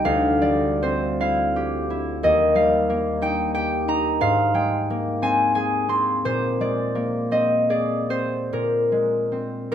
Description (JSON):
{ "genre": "classical, solo harp piece", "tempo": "49-62 BPM (dotted quarters)", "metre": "6/8", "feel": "rubato", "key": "unclear", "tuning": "A4 = 440 Hz", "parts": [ { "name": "concert harp", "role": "solo", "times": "0.0-9.7 s", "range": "D2 to C6", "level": "-19 LUFS", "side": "equal", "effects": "none" } ], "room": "light reverb", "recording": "close, detailed microphones", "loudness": "-19 LUFS", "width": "side -9 dB against mid", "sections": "0.0-9.7 A section", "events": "none", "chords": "0.0 Dm11; 2.2 Ebadd9; 4.2 Abmaj9; 6.2 Bb13; 8.5 Bb9" }